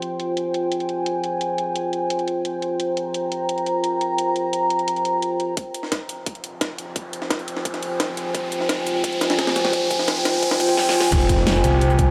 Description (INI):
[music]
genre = dark technical drum and bass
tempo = 173 BPM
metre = 4/4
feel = straight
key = F minor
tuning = A4 = 440 Hz
[part]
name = dark analog pad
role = sustained chords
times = 0.0-12.1 s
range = F4 to Bb5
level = -24 LUFS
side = equal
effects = chorus, sidechain pumping
[part]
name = dubstep drum kit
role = drums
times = 0.0-12.1 s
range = cabasa, crash cymbal, hi-hat, snare drum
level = -30 LUFS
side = equal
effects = high-pass filter on hats, low-pass filter on hats, high-pass filter on perc, low-pass filter on perc, high-pass filter on snare, low-pass filter on snare, high-pass filter on cymbals, low-pass filter on cymbals
[part]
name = breakbeat sampler-style drum kit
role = drums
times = 5.6-12.1 s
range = hi-hat, snare drum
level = -30 LUFS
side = equal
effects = high-pass filter on hats, high-pass filter on snare
[part]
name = electronic kick drum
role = drums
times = 5.6-12.1 s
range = none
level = -27 LUFS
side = equal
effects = high-pass filter on kick, high-pass filter on room
[part]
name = riser and impact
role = sound effects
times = 6.8-12.1 s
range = none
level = -29 LUFS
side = equal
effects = none
[part]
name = snarling distorted saw bass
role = bass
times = 11.1-12.1 s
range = F1 to C2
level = -22 LUFS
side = equal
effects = distortion, tube saturation
[sound]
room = wet huge ambient reverb, RT60 3.8 s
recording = dreamy mix soaked in reverb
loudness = -22 LUFS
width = mono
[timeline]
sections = 0.0-5.6 A section; 5.6-11.1 B section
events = build-up 5.6-11.1; filter sweep on analog synth pad 5.6-11.1; riser 6.8-11.1; drum fill 8.3-10.8, 10.8-11.1; impact 11.1-12.1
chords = 0.0 Fm